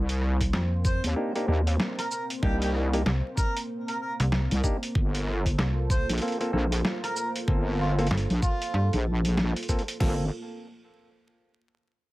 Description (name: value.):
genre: glitch hop.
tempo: 95 BPM.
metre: 4/4.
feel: swing 60% on 16ths.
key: G minor.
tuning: A4 = 440 Hz.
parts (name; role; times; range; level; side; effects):
dark analog pad; sustained chords; 0.0-10.3 s; Bb3 to C5; -36 LUFS; right 1 dB; chorus, sidechain pumping.
wobble bass; bass; 0.0-10.3 s; G1 to Eb2; -25 LUFS; equal; chorus, tube saturation.
boom bap sampler-style drum kit; drums; 0.1-10.0 s; hi-hat, rim click, shaker, snare drum; -32 LUFS; equal; none.
dubstep drum kit; drums; 0.4-10.2 s; crash cymbal, kick drum, snare drum; -26 LUFS; equal; none.
slap-like FM bass; bass; 0.5-8.9 s; G1 to G2; -25 LUFS; equal; none.
mellow harmonica; melody; 0.8-8.9 s; F4 to C5; -33 LUFS; right 1 dB; none.
mellow clav; stabs; 1.2-10.3 s; Bb3 to A4; -31 LUFS; equal; sidechain pumping, digital delay.
room: light reverb.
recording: vinyl crackle.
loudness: -24 LUFS.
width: side -18 dB against mid.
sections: 0.0-10.0 A section; 10.0-12.1 B section.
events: drop 0.0-10.0.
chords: 0.0 Cm7; 5.0 Gm11.